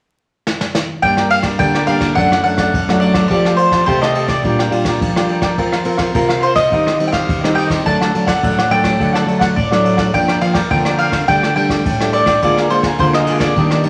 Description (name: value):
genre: samba and choro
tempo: 105 BPM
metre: 4/4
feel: straight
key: G minor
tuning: A4 = 441 Hz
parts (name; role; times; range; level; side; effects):
- jazz brush drum kit; drums; 0.5-13.9 s; kick drum, ride cymbal, rim click, snare drum; -22 LUFS; equal; none
- mandolin; melody; 1.0-13.9 s; C5 to A5; -19 LUFS; equal; none
- cavaquinho; accompaniment; 1.0-13.9 s; D4 to A5; -25 LUFS; equal; none
- nylon-string guitar; accompaniment; 1.0-13.9 s; F#2 to Bb4; -19 LUFS; equal; none
room: wet large studio reverb, RT60 0.9 s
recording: vinyl crackle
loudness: -15 LUFS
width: mono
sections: 0.0-1.0 A section; 1.0-13.9 B section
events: drum fill 0.5-1.0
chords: 0.0 N.C.; 1.0 Gm; 2.2 D/F#; 3.3 Fadd9; 4.4 Bb6; 5.6 Fsus4; 6.7 Cm/Eb; 7.9 D; 10.1 Gm7; 11.3 Dsus4; 12.4 Bb7/D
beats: 0.47 | 1.03 1.60 2.17 2.74 | 3.31 3.88 4.45 5.02 | 5.59 6.16 6.72 7.29 | 7.87 8.43 9.00 9.57 | 10.14 10.71 11.28 11.85 | 12.42 12.99 13.56